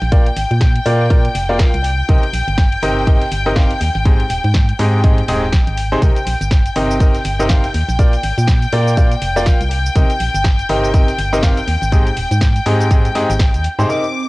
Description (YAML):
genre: piano house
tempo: 122 BPM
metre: 4/4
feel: swing 58% on 16ths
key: C minor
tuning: A4 = 442 Hz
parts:
  - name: rich studio string section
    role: sustained chords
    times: 0.0-14.3 s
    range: G5 to D6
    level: -22 LUFS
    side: left 1 dB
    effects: sidechain pumping, cassette tape
  - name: organ-like FM bass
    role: bass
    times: 0.0-13.9 s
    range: Eb1 to Bb2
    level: -18 LUFS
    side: equal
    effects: sidechain pumping
  - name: dusty soul sampler-style drum kit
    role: drums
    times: 0.0-13.8 s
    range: hi-hat, snare drum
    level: -35 LUFS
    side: equal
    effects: none
  - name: bright grand piano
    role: riff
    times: 0.1-14.0 s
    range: Ab2 to F5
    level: -19 LUFS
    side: equal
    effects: sidechain pumping, cassette tape
  - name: electronic kick drum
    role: drums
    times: 0.1-13.5 s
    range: none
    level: -13 LUFS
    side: equal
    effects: studio ambience, cassette tape
  - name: house drum kit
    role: drums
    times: 0.1-14.1 s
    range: hi-hat, shaker, snare drum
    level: -26 LUFS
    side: equal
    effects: studio ambience, cassette tape
  - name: ethereal airy pad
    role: texture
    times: 14.1-14.3 s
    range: C4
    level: -24 LUFS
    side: right 6 dB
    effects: ensemble chorus, built-in reverb, sidechain pumping, cassette tape
room: little or no reverb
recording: home recording on cassette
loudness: -12 LUFS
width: side -21 dB against mid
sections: 0.0-13.9 A section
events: none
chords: 0.1 Bb; 1.8 Cm7; 4.1 Abmaj7; 6.0 Cm7; 8.0 Bb; 9.7 Cm7; 11.9 Abmaj7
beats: | 0.12 0.61 1.10 1.59 | 2.09 2.58 3.07 3.56 | 4.05 4.55 5.04 5.53 | 6.02 6.51 7.00 7.50 | 7.99 8.48 8.97 9.46 | 9.96 10.45 10.94 11.43 | 11.92 12.41 12.91 13.40 | 13.89